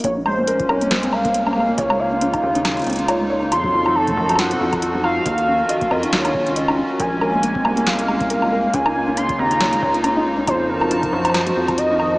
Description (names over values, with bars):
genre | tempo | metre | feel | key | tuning
IDM | 138 BPM | 4/4 | swing 56% on 16ths | Bb minor | A4 = 438 Hz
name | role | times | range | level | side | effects
warm velvety synth lead | melody | 0.0-12.2 s | Bb4 to C6 | -20 LUFS | equal | chorus, diffuse ambient delay
hollow soft pad | sustained chords | 0.3-12.2 s | Db3 to A5 | -23 LUFS | equal | chorus, vintage 12-bit sampler grit, sidechain pumping
felt-muted upright piano | arpeggios | 0.0-12.2 s | F2 to Eb5 | -24 LUFS | left 1 dB | tape echo
rubbery square bass | bass | 0.0-12.2 s | Bb1 to Gb2 | -26 LUFS | equal | none
booming analog drum machine | drums | 0.0-12.1 s | hi-hat, snare drum, woodblock | -24 LUFS | equal | overdrive
electronic kick drum | drums | 0.0-11.8 s | none | -32 LUFS | equal | overdrive
room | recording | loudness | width
wet huge ambient reverb, RT60 8.7 s | dreamy mix soaked in reverb, small speaker sound | -16 LUFS | side -22 dB against mid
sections
0.0-12.2 A section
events
none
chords
0.0 Bbm7; 1.8 Db69; 3.5 F7b9; 5.3 Ebm9; 7.0 Bbm7; 8.7 Db69; 10.5 F7b9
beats
| 0.04 0.47 0.91 1.34 | 1.78 2.21 2.65 3.08 | 3.52 3.95 4.39 4.82 | 5.26 5.69 6.13 6.56 | 7.00 7.43 7.87 8.30 | 8.73 9.17 9.61 10.04 | 10.47 10.91 11.34 11.78